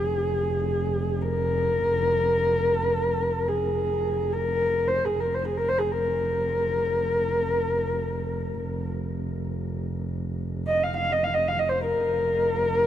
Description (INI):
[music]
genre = mongolian traditional, Mongolian folk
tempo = free time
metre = none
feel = none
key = F yu mode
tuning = A4 = 441 Hz
[part]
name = dark horsehead fiddle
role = melody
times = 0.0-12.9 s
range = Ab4 to F5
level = -24 LUFS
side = left 1 dB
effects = none
[part]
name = warm double bass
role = drone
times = 0.0-12.9 s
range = F1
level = -29 LUFS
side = right 2 dB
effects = none
[sound]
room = moderate huge ambient reverb, RT60 8.2 s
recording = dark, warm production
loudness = -23 LUFS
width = side -11 dB against mid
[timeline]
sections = 0.0-12.9 A section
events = none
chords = none